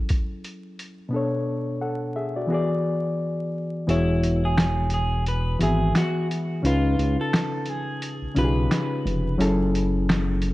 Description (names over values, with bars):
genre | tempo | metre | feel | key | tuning
lo-fi hip hop | 87 BPM | 4/4 | swing 58% on 16ths | E major | A4 = 440 Hz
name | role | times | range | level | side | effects
bright reed electric piano | accompaniment | 0.0-10.5 s | B2 to F#5 | -25 LUFS | left 1 dB | low-pass filter
lo-fi sampler-style drum kit | drums | 0.1-10.5 s | finger snaps, hi-hat, kick drum, snare drum | -25 LUFS | equal | overdrive
electric guitar through a small old amp | melody | 3.9-9.4 s | E4 to B4 | -29 LUFS | right 2 dB | low-pass filter, tape echo
smooth gliding synth bass | bass | 3.9-10.5 s | E1 to C#2 | -24 LUFS | equal | none
room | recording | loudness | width
moderate plate reverb, RT60 2.1 s | dreamy mix soaked in reverb, vinyl crackle, nothing above 11.0 kHz | -21 LUFS | side -18 dB against mid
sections
0.0-3.9 A section; 3.9-10.5 B section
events
filter sweep 0.0-3.9; kick muted 3.9-10.5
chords
0.0 F#m9; 1.1 Bm7; 2.5 E9; 3.9 E69; 6.6 C#7; 9.4 F#m9